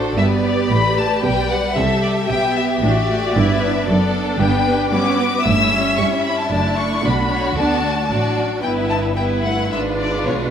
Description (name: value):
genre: quick classical-period movement for string orchestra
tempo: 113 BPM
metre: 4/4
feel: rubato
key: G major, D major from 4.4 s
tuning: A4 = 441 Hz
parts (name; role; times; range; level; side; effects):
- rich chamber violin section; second line; 0.0-10.5 s; E4 to E5; -22 LUFS; left 2 dB; none
- rich chamber viola section; accompaniment; 0.0-10.5 s; F#3 to G4; -21 LUFS; right 2 dB; none
- clear chamber cello section; bass; 0.0-10.5 s; F#2 to G3; -23 LUFS; right 2 dB; none
- rich chamber double bass section; bass; 0.0-10.5 s; F#1 to G2; -24 LUFS; right 2 dB; none
- rich chamber violin section; melody; 0.2-10.3 s; C#5 to E6; -22 LUFS; left 4 dB; none
room: moderate scoring stage reverb, RT60 1.6 s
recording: none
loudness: -15 LUFS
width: side -8 dB against mid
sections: 0.0-10.5 A section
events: none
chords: 0.2 G; 5.5 A7/G; 6.5 D/F#; 8.6 Em/G; 9.7 G#dim7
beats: | 0.18 0.71 1.25 1.77 | 2.30 2.83 3.35 3.88 | 4.40 4.92 5.45 5.98 | 6.51 7.05 7.58 8.11 | 8.64 9.18 9.71 10.26